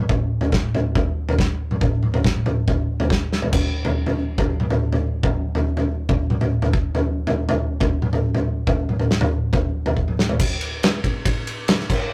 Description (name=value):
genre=rock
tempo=140 BPM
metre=4/4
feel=straight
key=none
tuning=none
part: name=loose indie drum kit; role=drums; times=0.1-12.0 s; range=crash cymbal, kick drum, ride cymbal, snare drum, toms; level=-21 LUFS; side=equal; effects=none
room=light reverb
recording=rough rehearsal-room recording, tube saturation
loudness=-21 LUFS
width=mono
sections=0.0-3.5 A section; 3.5-10.4 B section; 10.4-12.1 C section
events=drum fill 3.3, 10.0-10.4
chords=none